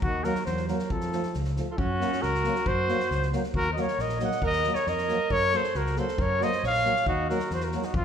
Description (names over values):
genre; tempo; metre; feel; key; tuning
balkan folk, Balkan brass band; 136 BPM; 2/4; straight; unclear; A4 = 439 Hz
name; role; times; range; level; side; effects
mellow trumpet; melody; 0.0-8.0 s; F4 to Gb5; -28 LUFS; left 1 dB; none
clear alto saxophone; second line; 0.0-8.0 s; Eb3 to Eb5; -31 LUFS; right 4 dB; none
fretless electric bass; bass; 0.0-8.0 s; Bb1 to Gb2; -31 LUFS; equal; none
natural country drum kit; percussion; 0.0-8.0 s; kick drum, snare drum; -35 LUFS; left 1 dB; none
warm euphonium; accompaniment; 0.2-7.8 s; A3 to Bb3; -36 LUFS; left 5 dB; none
warm euphonium; accompaniment; 0.3-7.8 s; F3 to Gb3; -36 LUFS; right 4 dB; none
room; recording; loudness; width
moderate recital hall reverb, RT60 1.4 s; recorded in a church or concert hall; -24 LUFS; side -8 dB against mid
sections
0.0-1.8 A section; 1.8-8.0 A section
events
none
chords
0.0 Ebm; 0.9 F; 1.8 Gb; 3.5 Ebm; 5.3 Gb; 7.1 Ebm